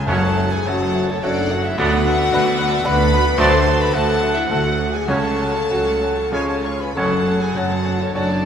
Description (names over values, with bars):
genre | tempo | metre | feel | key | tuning
classical, romantic movement for piano and orchestra | 92-115 BPM | 3/4 | rubato | F# minor | A4 = 441 Hz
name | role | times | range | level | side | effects
clear grand piano | melody | 0.0-8.5 s | F#1 to C#5 | -23 LUFS | left 2 dB | none
warm symphonic violin section | melody | 0.0-8.5 s | C#5 to C#6 | -28 LUFS | left 3 dB | none
mellow hollow concert flute | second line | 0.0-8.5 s | C#5 to C#6 | -28 LUFS | left 1 dB | none
warm studio violin section | second line | 0.0-8.4 s | A4 to C#6 | -31 LUFS | equal | none
warm clarinet | second line | 0.1-8.3 s | C#5 to F#5 | -31 LUFS | left 3 dB | none
warm cor anglais | second line | 0.1-8.5 s | C#5 to A5 | -28 LUFS | right 1 dB | none
dark symphonic viola section | accompaniment | 0.1-8.4 s | F#3 to A4 | -29 LUFS | right 2 dB | none
warm bassoon | accompaniment | 0.1-8.3 s | A3 to C#4 | -31 LUFS | right 1 dB | none
bright trombone section | sustained chords | 0.1-7.2 s | E#3 to C#4 | -30 LUFS | right 3 dB | none
mellow French horn section | sustained chords | 0.1-8.5 s | C#4 to C#5 | -23 LUFS | left 3 dB | none
mellow trumpet | stabs | 0.1-7.2 s | C#5 to D5 | -27 LUFS | right 3 dB | none
dark symphonic double bass section | bass | 0.1-8.5 s | F#1 to D2 | -25 LUFS | right 4 dB | none
rich symphonic cello section | bass | 0.1-8.5 s | C#2 to F#2 | -26 LUFS | right 3 dB | none
timpani | percussion | 0.1-0.9, 5.1-6.0 s | F#2 to C#3 | -29 LUFS | left 1 dB | none
room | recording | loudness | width
wet concert hall reverb, RT60 2.1 s | none | -16 LUFS | side -8 dB against mid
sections
0.1-8.5 A section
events
none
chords
0.1 F#m; 1.8 Bm/D; 3.4 D7; 5.1 F#m/C#; 6.3 C#; 7.0 F#m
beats
| 0.07 0.67 1.23 | 1.79 2.33 2.86 | 3.39 3.94 4.49 | 5.09 5.71 6.34 | 6.97 7.57 8.16